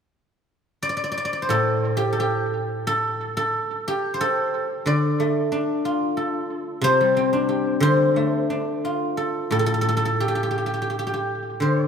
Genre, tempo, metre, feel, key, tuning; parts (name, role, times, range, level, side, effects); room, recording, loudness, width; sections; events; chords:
chinese traditional, Chinese solo plucked strings; 90 BPM; 4/4; uneven beats, rubato; D yu mode; A4 = 444 Hz
guzheng; solo; 0.8-11.9 s; A2 to D5; -20 LUFS; equal; tape echo
moderate concert hall reverb, RT60 2.4 s; -20 LUFS; side -7 dB against mid
0.0-1.5 A section; 1.5-11.9 B section